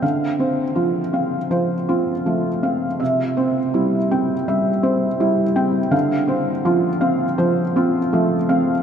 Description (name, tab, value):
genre	neoclassical minimalist piano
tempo	82 BPM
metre	4/4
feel	rubato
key	unclear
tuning	A4 = 439 Hz
part	felt-muted upright piano	solo	0.0-8.8 s	C3 to G5	-17 LUFS	equal	none
room	wet cathedral reverb, RT60 6.5 s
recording	in a vast, echoing space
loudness	-17 LUFS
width	side -8 dB against mid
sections	0.0-8.8 A section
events	none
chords	0.0 Dm7; 3.0 C; 5.9 Dm7